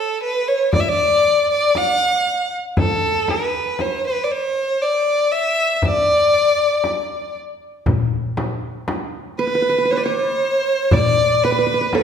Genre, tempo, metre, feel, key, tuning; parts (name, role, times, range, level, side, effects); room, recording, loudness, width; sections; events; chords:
Arabic maqam ensemble; 118 BPM (eighths); 10/8; straight; D maqam rast; A4 = 442 Hz
rich violin; melody; 0.0-12.0 s; A4 to F#5-50c; -17 LUFS; left 1 dB
frame drum; percussion; 0.7-12.0 s; -22 LUFS; left 1 dB
darbuka; percussion; 7.9-12.0 s; -23 LUFS; left 2 dB
qanun; second line; 9.4-12.0 s; A4 to D5; -21 LUFS; right 4 dB
wet recital hall reverb, RT60 1.5 s; recorded in a church or concert hall; -16 LUFS; side -7 dB against mid
0.0-7.9 A section; 7.9-12.0 B section